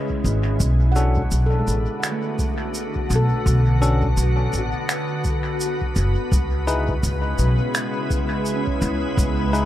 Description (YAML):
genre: ambient dub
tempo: 84 BPM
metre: 4/4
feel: swing 59% on 16ths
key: B dorian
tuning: A4 = 440 Hz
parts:
  - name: soft additive organ-like pad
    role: sustained chords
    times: 0.0-9.7 s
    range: C#3 to B4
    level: -26 LUFS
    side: left 1 dB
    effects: ensemble chorus, built-in reverb
  - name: handpan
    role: arpeggios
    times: 0.0-9.7 s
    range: G#3 to F#5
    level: -30 LUFS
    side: right 2 dB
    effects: analog delay
  - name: electronic kick drum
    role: drums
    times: 0.1-9.3 s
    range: none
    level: -25 LUFS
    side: equal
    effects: none
  - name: upright bass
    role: bass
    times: 0.2-9.7 s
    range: F#1 to C#2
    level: -20 LUFS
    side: equal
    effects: tube saturation
  - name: shaker and finger snaps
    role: drums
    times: 0.3-9.7 s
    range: none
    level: -29 LUFS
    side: right 1 dB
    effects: dub echo
  - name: bell-like tine electric piano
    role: stabs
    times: 1.0-9.7 s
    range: C#4 to B4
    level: -29 LUFS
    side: left 2 dB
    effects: dub echo
room: light reverb, small room ambience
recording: echo-heavy mix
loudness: -19 LUFS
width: side -13 dB against mid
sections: 0.6-9.7 A section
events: none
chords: 0.0 C#m7; 0.6 Bm7; 6.3 C#m7